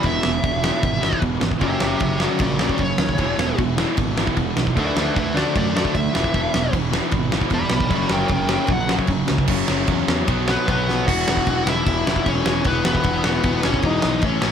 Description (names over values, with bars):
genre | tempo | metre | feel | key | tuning
punk rock | 152 BPM | 4/4 | straight | unclear | A4 = 440 Hz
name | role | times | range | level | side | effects
high-gain lead guitar | melody | 0.0-14.5 s | B3 to B5 | -23 LUFS | equal | distortion
overdriven semi-hollow guitar | riff | 0.0-14.5 s | E2 to D4 | -26 LUFS | left 12 dB | none
tight distorted guitar | riff | 0.0-11.1 s | E2 to D4 | -26 LUFS | right 10 dB | distortion
tight distorted guitar | riff | 0.0-14.5 s | E2 to D4 | -28 LUFS | equal | distortion
fuzz picked electric bass | bass | 0.0-14.5 s | E1 to F#2 | -26 LUFS | equal | overdrive
big rock drum kit | drums | 0.0-14.5 s | crash cymbal, kick drum, ride cymbal, snare drum | -23 LUFS | equal | none
room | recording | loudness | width
little or no reverb | none | -18 LUFS | side -8 dB against mid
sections
0.0-9.5 A section; 9.5-11.1 B section; 11.1-14.5 C section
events
lead electric guitar solo 0.0-9.5; drum fill 10.9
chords
0.0 E; 1.6 F#; 3.2 E; 4.8 D; 6.1 E; 7.9 F#; 9.5 F#5; 10.3 B5; 11.1 E5